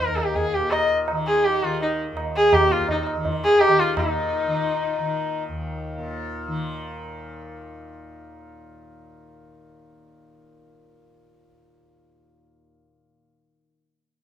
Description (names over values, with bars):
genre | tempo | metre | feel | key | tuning
indian classical, Hindustani | 167 BPM | 4/4 | straight | unclear | A4 = 441 Hz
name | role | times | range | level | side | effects
dark sarangi | melody | 0.0-5.4 s | Eb4 to Eb5 | -20 LUFS | equal | none
pedal harmonium | second line | 0.0-5.4 s | Eb4 to Eb5 | -28 LUFS | left 4 dB | none
tanpura | drone | 0.0-13.6 s | Eb2 to Eb3 | -32 LUFS | left 1 dB | none
tabla | percussion | 0.0-4.1 s | none | -28 LUFS | right 2 dB | none
room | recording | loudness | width
light reverb | minimal, uncompressed stereo recording | -20 LUFS | side -10 dB against mid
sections
0.0-4.0 A section; 4.0-6.8 B section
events
none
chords
none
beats
0.35 0.72 | 1.08 1.44 1.80 2.17 | 2.53 2.89 3.25 3.60 | 3.96 4.32 4.68 5.04 | 5.39 5.75 6.10 6.46